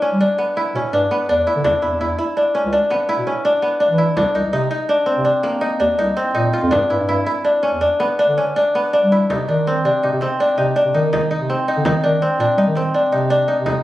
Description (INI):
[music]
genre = contemporary instrumental, chamber music in an uneven meter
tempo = 165 BPM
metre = 7/4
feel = straight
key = unclear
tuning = A4 = 440 Hz
[part]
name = kora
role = arpeggios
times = 0.0-13.8 s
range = Bb3 to F4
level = -16 LUFS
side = equal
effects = none
[part]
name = breathy bass clarinet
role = bass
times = 0.1-13.8 s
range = C2 to G3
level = -21 LUFS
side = equal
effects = none
[part]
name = frame drum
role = percussion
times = 1.1-13.8 s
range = none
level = -27 LUFS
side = left 1 dB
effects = none
[sound]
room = moderate recital hall reverb, RT60 1.5 s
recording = recorded on a phone in the room, studio reverb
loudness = -15 LUFS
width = side -15 dB against mid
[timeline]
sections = 0.0-9.3 A section; 9.3-13.8 B section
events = none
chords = 0.0 G6; 1.6 E5; 4.2 Cm7; 6.7 G; 9.3 Cm; 11.9 N.C.